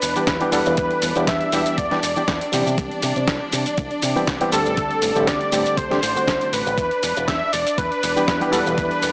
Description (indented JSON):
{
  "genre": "nu-disco, nu disco",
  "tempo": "120 BPM",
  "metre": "4/4",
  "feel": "swing 54% on 16ths",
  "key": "E minor",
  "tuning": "A4 = 441 Hz",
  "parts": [
    { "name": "wide unison lead", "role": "melody", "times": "0.0-9.1 s", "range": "A4 to E5", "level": "-22 LUFS", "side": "equal", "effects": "analog delay" },
    { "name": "clear studio string section", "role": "sustained chords", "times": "0.0-9.1 s", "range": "D4 to D5", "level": "-28 LUFS", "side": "equal", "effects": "sidechain pumping" },
    { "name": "fingered electric bass with an envelope filter", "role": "bass", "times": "0.0-9.1 s", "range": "E1 to C3", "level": "-27 LUFS", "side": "equal", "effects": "tube saturation" },
    { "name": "dusty soul sampler-style drum kit", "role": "drums", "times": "0.0-9.1 s", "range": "hi-hat, shaker, snare drum", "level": "-25 LUFS", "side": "equal", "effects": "none" },
    { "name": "barky reed electric piano", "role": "accompaniment", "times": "0.2-9.1 s", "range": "D3 to A4", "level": "-23 LUFS", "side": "equal", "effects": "overdrive, fast tremolo, sidechain pumping" },
    { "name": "electronic kick drum", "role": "drums", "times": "0.3-8.9 s", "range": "none", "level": "-26 LUFS", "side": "equal", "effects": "none" }
  ],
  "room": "light reverb, digital ambience",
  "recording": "dry, gritty hardware recording, cassette tape, small speaker sound",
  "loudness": "-18 LUFS",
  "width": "side -32 dB against mid",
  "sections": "0.0-9.1 A section",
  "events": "none",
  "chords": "0.0 Em7; 2.5 Cmaj7; 4.5 D7sus4; 6.8 Em7"
}